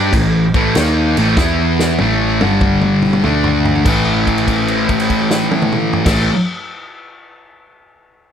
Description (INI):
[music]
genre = blues rock power trio and southern rock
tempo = 96 BPM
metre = 4/4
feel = swing 67% on 8ths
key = unclear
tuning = A4 = 440 Hz
[part]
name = thick fuzz guitar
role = riff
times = 0.0-6.3 s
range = G2 to G4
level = -14 LUFS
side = equal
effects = distortion
[part]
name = vintage muted picked electric bass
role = bass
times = 0.0-6.3 s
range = G1 to G2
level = -19 LUFS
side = equal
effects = none
[part]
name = vintage drum kit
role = drums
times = 0.1-6.2 s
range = crash cymbal, kick drum, snare drum, toms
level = -19 LUFS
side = equal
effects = none
[sound]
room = light reverb, small room ambience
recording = none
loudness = -12 LUFS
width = side -8 dB against mid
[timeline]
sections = 0.0-3.9 A section; 3.9-6.4 B section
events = drum fill 1.4-3.9; held note 3.9-6.0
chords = 0.0 A5; 1.4 E5; 2.0 A5; 2.3 G5; 3.2 D5; 3.9 A5